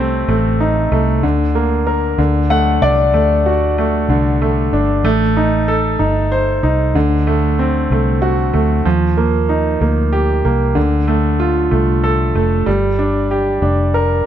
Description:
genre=six-eight pop ballad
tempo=63 BPM (dotted quarters)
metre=6/8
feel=straight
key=unclear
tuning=A4 = 441 Hz
part: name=clear concert grand piano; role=accompaniment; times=0.0-14.3 s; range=C3 to F#5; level=-15 LUFS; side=right 1 dB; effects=none
part: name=vintage muted fingered electric bass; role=bass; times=0.0-14.2 s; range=F1 to Eb2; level=-17 LUFS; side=left 1 dB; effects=none
room=light reverb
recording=none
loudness=-13 LUFS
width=side -10 dB against mid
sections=0.0-14.3 A section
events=grand piano fill 2.2-3.1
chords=0.0 Adim; 1.2 Bb/D; 2.2 D; 5.0 Adim; 7.0 D7; 8.9 Ebadd9; 10.8 Dm; 12.7 Gm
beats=0.29 | 1.24 2.19 | 3.14 4.09 | 5.04 6.00 | 6.95 7.90 | 8.86 9.81 | 10.76 11.72 | 12.67 13.62

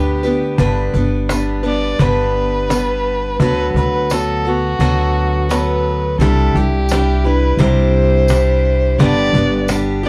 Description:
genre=acoustic folk duo or small band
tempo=86 BPM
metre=4/4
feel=straight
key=G major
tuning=A4 = 440 Hz
part: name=dark fiddle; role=second line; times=0.0-10.1 s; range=F#4 to D5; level=-21 LUFS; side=equal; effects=none
part: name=picked acoustic archtop guitar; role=accompaniment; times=0.0-10.1 s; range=G2 to B4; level=-21 LUFS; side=equal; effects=none
part: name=upright bass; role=bass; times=0.0-10.1 s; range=G1 to D2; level=-20 LUFS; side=equal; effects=none
part: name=cajon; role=percussion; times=0.2-10.0 s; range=none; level=-20 LUFS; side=equal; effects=none
part: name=tambourine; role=percussion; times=0.2-9.8 s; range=none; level=-34 LUFS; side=equal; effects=none
room=little or no reverb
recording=dry, close 1970s-style studio recording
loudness=-16 LUFS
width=mono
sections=0.6-10.1 A section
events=fiddle solo 0.6-10.1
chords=0.0 G; 3.4 D6; 6.2 Cadd9; 9.0 G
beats=| 0.59 1.30 2.00 2.70 | 3.40 4.11 4.81 5.51 | 6.21 6.91 7.60 8.30 | 9.00 9.69

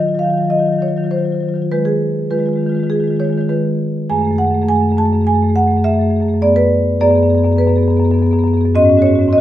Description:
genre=classical, contemporary piece for solo marimba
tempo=102 BPM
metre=4/4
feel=rubato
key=unclear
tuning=A4 = 440 Hz
part: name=marimba with medium hard mallets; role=solo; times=0.0-9.4 s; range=Gb2 to A5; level=-12 LUFS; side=equal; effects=none
room=moderate recital hall reverb, RT60 1.5 s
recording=minimal, uncompressed stereo recording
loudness=-12 LUFS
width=side -13 dB against mid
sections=0.0-9.4 A section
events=none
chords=0.0 Ebmadd9; 1.7 Abm6/Eb; 4.1 Gbmadd9; 6.4 Bm6/F#; 8.8 Ab7sus4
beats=0.51 1.11 | 1.71 2.30 2.90 3.50 | 4.09 4.68 5.26 5.85 | 6.43 7.02 7.60 8.18 | 8.76 9.33

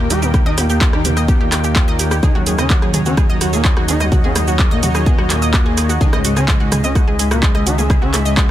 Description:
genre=melodic techno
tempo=127 BPM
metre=4/4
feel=straight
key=unclear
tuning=A4 = 438 Hz
part: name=expressive portamento lead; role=melody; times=0.0-8.5 s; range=F#3 to G4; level=-22 LUFS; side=equal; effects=chorus, sidechain pumping, digital delay
part: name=soft supersaw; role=second line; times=0.0-8.5 s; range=F#2 to G3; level=-25 LUFS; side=equal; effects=none
part: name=evolving wavetable pad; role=sustained chords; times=0.0-8.5 s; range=C#4 to G5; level=-26 LUFS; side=equal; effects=phaser, built-in reverb, sidechain pumping
part: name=analog pluck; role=arpeggios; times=0.0-8.5 s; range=F#4 to D#6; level=-24 LUFS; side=equal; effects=chorus, sidechain pumping, digital delay
part: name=fat analog bass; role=bass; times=0.0-8.5 s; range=C#2 to D#2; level=-20 LUFS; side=equal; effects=sidechain pumping
part: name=punchy analog drum machine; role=drums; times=0.1-8.5 s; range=handclaps, hi-hat, rim click, shaker, toms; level=-20 LUFS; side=right 1 dB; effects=none
part: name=electronic kick drum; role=drums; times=0.3-8.5 s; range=none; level=-15 LUFS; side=equal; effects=none
room=little or no reverb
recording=dense, heavily limited modern master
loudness=-12 LUFS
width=side -12 dB against mid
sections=0.0-8.5 A section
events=none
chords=0.0 D#; 2.2 Bmaj13/D# (rootless); 6.0 C#madd9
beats=| 0.34 0.81 1.28 1.76 | 2.23 2.70 3.17 3.65 | 4.12 4.59 5.07 5.54 | 6.01 6.48 6.96 7.43 | 7.90 8.37

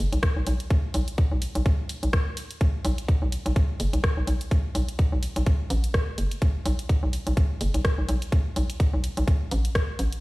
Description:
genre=minimal techno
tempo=126 BPM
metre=4/4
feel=swing 57% on 16ths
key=unclear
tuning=A4 = 444 Hz
part: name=hollow knocking FM bass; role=bass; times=0.0-10.1 s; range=F#1 to B1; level=-24 LUFS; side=equal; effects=sidechain pumping
part: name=garage drum kit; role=drums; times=0.1-10.2 s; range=hi-hat, rim click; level=-34 LUFS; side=equal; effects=none
part: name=electronic kick drum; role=drums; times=0.2-9.9 s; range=none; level=-21 LUFS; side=equal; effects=none
room=little or no reverb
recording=played on a big sound system in a bare room, stone room reverb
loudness=-22 LUFS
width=side -21 dB against mid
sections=0.0-10.2 A section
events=none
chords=none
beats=0.23 | 0.70 1.18 1.66 2.13 | 2.61 3.08 3.56 4.04 | 4.51 4.99 5.47 5.94 | 6.42 6.89 7.37 7.85 | 8.32 8.80 9.28 9.75

